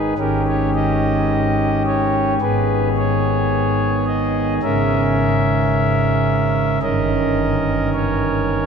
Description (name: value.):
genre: classical, chorale-style piece for pipe organ.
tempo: 54 BPM.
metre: 4/4.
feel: rubato.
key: unclear.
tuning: A4 = 440 Hz.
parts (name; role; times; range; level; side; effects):
pipe organ, principal; solo; 0.0-8.7 s; G1 to E5; -16 LUFS; equal; none.
room: wet cathedral reverb, RT60 6.0 s.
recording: nothing above 10.9 kHz.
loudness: -16 LUFS.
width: side -6 dB against mid.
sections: 0.0-8.7 A section.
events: none.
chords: 0.2 D#7/G#; 2.4 G#m; 4.6 A#m7b5/G#; 6.8 D#7/G.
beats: 0.17 1.30 | 2.42 3.52 4.63 5.73 | 6.83 7.93.